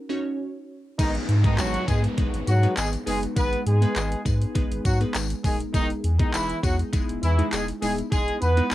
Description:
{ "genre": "dance-pop", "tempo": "101 BPM", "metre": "4/4", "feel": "straight", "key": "G# minor", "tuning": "A4 = 440 Hz", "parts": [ { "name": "glassy wavetable pluck", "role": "accompaniment", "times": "0.1-8.7 s", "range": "G#3 to C#5", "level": "-30 LUFS", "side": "equal", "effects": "chorus, sidechain pumping, cassette tape" }, { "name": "warm horn section", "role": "melody", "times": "1.0-8.7 s", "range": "D#3 to B4", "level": "-27 LUFS", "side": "equal", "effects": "sidechain pumping, cassette tape, tape echo" }, { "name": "warm sub bass", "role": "bass", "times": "1.0-8.7 s", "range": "D#1 to G#2", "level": "-24 LUFS", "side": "equal", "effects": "sidechain pumping" }, { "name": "pop drum kit", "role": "drums", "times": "1.0-8.7 s", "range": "crash cymbal, handclaps, hi-hat, kick drum", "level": "-26 LUFS", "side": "equal", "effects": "cassette tape" }, { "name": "tambourine", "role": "percussion", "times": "1.0-8.7 s", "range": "none", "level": "-38 LUFS", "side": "left 11 dB", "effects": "none" }, { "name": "downlifter", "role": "sound effects", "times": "1.0-5.7 s", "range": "none", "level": "-38 LUFS", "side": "equal", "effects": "none" } ], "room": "light reverb", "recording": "home recording on cassette", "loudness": "-21 LUFS", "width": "side -15 dB against mid", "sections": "1.0-8.7 A section", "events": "break 0.0-1.0; drop 1.0-8.7", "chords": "0.0 F#5; 1.0 G#m; 5.7 Emaj7" }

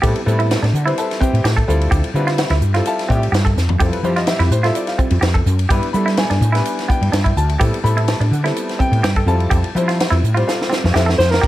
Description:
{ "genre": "electric jazz fusion", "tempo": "126 BPM", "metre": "4/4", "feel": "straight", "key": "F lydian", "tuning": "A4 = 439 Hz", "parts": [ { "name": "clear grand piano", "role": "accompaniment", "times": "0.0-11.5 s", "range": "G3 to B5", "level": "-22 LUFS", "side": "left 2 dB", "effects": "plate reverb" }, { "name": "clean electric guitar", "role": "stabs", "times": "0.0-11.5 s", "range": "B3 to A4", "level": "-23 LUFS", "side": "right 3 dB", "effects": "lush chorus, plate reverb" }, { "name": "woody fretless electric bass", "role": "bass", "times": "0.0-11.5 s", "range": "Bb1 to G3", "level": "-16 LUFS", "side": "equal", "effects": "ensemble chorus" }, { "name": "crisp fusion drum kit", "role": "drums", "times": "0.0-11.5 s", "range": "crash cymbal, hi-hat, kick drum, ride cymbal, snare drum, toms", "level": "-20 LUFS", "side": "equal", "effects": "none" }, { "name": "breathy alto saxophone", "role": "melody", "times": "11.2-11.5 s", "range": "Bb4 to C5", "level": "-15 LUFS", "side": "equal", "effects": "none" } ], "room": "light reverb", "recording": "none", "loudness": "-14 LUFS", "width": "side -15 dB against mid", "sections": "0.0-11.4 A section", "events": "drum fill 3.6, 10.5-11.4", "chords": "0.0 Am9; 1.7 Dm11; 3.8 Fmaj9; 5.7 Em7/G; 7.6 Am9; 9.3 Fmaj9" }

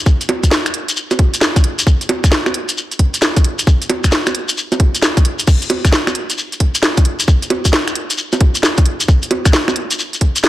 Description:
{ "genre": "UK garage", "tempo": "133 BPM", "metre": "4/4", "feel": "swing 65% on 16ths", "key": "none", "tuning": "none", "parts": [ { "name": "electronic kick drum", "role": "drums", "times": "0.1-10.3 s", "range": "none", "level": "-12 LUFS", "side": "equal", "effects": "none" }, { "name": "shekere", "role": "percussion", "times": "0.1-10.5 s", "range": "none", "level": "-21 LUFS", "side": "left 3 dB", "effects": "none" }, { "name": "garage drum kit", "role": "drums", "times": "0.2-10.5 s", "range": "bongos, crash cymbal, finger snaps, hi-hat, snare drum", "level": "-16 LUFS", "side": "right 1 dB", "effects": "none" } ], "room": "little or no reverb", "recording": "dry, gritty hardware recording", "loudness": "-12 LUFS", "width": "side -15 dB against mid", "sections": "0.0-10.5 A section", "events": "none", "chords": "none" }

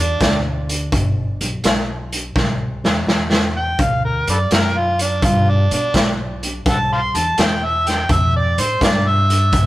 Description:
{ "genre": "electric blues shuffle", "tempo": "84 BPM", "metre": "4/4", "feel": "swing 68% on 8ths", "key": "G mixolydian", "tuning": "A4 = 438 Hz", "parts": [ { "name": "overdriven harmonica", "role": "melody", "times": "0.0-9.7 s", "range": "D4 to C6", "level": "-19 LUFS", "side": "equal", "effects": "analog delay" }, { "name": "upright bass", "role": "bass", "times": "0.0-9.7 s", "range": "G1 to B2", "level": "-21 LUFS", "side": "equal", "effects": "none" }, { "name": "raw garage drum kit", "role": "drums", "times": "0.2-9.7 s", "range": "hi-hat, kick drum, snare drum", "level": "-18 LUFS", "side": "equal", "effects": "none" } ], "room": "light reverb", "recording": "rough rehearsal-room recording, warm saturation", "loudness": "-15 LUFS", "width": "side -16 dB against mid", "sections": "0.0-9.7 A section", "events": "harmonica solo 0.0-9.7; drum fill 2.4-3.8", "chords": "0.0 G; 3.8 D; 6.7 C" }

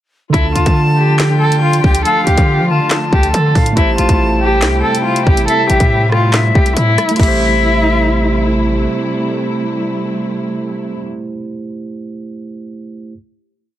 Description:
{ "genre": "hip hop, drill", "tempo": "140 BPM", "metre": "4/4", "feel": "half-time", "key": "A minor", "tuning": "A4 = 442 Hz", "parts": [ { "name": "dark cello", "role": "melody", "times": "0.3-8.4 s", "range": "E4 to A4", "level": "-16 LUFS", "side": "left 1 dB", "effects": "low-pass filter" }, { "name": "silver concert flute", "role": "second line", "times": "0.3-8.4 s", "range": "E5 to A5", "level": "-20 LUFS", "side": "left 4 dB", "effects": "tape echo" }, { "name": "overdriven tine electric piano", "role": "accompaniment", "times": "0.3-13.1 s", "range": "D3 to C5", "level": "-20 LUFS", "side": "right 4 dB", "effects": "low-pass filter" }, { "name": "muted studio string section", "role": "sustained chords", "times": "0.3-11.0 s", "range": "C3 to F4", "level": "-22 LUFS", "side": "left 1 dB", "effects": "none" }, { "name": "hard-hitting 808-style bass", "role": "bass", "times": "0.3-8.9 s", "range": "A1 to F3", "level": "-15 LUFS", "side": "equal", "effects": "none" }, { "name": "drill drum kit", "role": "drums", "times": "0.3-7.3 s", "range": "crash cymbal, handclaps, hi-hat, kick drum, rim click, snare drum", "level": "-15 LUFS", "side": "equal", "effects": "none" } ], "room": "small room ambience", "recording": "dense, heavily limited modern master", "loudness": "-11 LUFS", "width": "side -12 dB against mid", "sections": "0.3-7.2 hook; 7.2-10.6 final chord", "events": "none", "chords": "0.3 Dm; 3.8 Am7" }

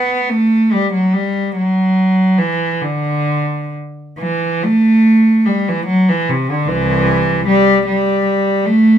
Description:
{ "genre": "classical, free, expressive piece for unaccompanied cello", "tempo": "41-51 BPM (dotted quarters)", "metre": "6/8", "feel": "rubato", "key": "G major", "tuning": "A4 = 442 Hz", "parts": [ { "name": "warm cello", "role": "solo", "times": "0.0-9.0 s", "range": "C2 to B3", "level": "-12 LUFS", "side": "equal", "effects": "none" } ], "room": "light reverb", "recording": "minimal, uncompressed stereo recording", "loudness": "-12 LUFS", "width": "side -9 dB against mid", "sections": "0.0-9.0 A section", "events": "none", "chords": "none" }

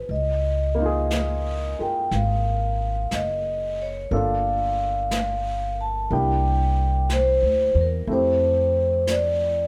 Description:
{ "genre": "jazz ballad", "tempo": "60 BPM", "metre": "4/4", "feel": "swing 69% on 8ths", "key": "unclear", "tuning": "A4 = 440 Hz", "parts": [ { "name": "vibraphone with medium mallets", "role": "melody", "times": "0.0-9.7 s", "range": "Bb4 to A5", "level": "-25 LUFS", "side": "equal", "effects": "none" }, { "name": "warm baby grand piano", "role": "accompaniment", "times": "0.0-9.7 s", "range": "A3 to Bb4", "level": "-33 LUFS", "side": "equal", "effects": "none" }, { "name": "upright bass", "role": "bass", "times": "0.0-9.7 s", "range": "Gb1 to F2", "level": "-27 LUFS", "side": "equal", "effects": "none" }, { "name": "jazz brush drum kit", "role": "drums", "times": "0.1-9.7 s", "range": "brushed snare drum, hi-hat, snare drum", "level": "-37 LUFS", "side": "equal", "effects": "none" } ], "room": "light reverb", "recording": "none", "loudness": "-23 LUFS", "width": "mono", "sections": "0.0-9.7 A section", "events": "none", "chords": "0.1 Db69; 4.1 Gm7; 6.1 C9; 8.1 Fmaj9" }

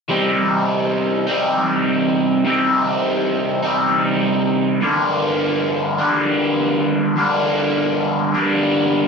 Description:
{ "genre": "rock", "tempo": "51 BPM (dotted quarters)", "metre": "6/8", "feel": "straight", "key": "unclear", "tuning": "A4 = 440 Hz", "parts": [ { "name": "raw garage guitar", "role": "solo", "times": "0.1-9.1 s", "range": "G2 to Eb4", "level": "-16 LUFS", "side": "equal", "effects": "overdrive, phaser" } ], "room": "wet studio reverb, RT60 0.5 s", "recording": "band playing live in one room", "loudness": "-16 LUFS", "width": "side -5 dB against mid", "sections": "0.1-9.1 A section", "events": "none", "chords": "0.1 Cm; 4.8 Gm" }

